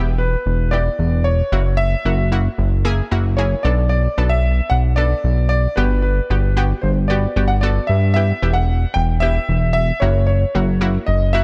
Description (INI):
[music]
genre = dance-pop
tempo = 113 BPM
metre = 4/4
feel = straight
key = E minor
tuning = A4 = 441 Hz
[part]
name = analog pluck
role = accompaniment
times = 0.0-11.4 s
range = A#3 to A4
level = -28 LUFS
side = equal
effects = chorus
[part]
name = fat analog bass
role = bass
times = 0.0-11.4 s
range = E1 to G2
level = -18 LUFS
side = equal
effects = none
[part]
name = warm concert grand piano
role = melody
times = 0.2-11.4 s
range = B4 to G5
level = -24 LUFS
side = equal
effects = tape echo
[sound]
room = studio reverb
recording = dark, warm production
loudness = -17 LUFS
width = mono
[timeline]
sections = 0.0-11.4 A section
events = none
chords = 0.0 Em; 1.5 F#7; 3.6 Bm7; 5.8 Gmaj7; 8.2 Em; 10.0 F#7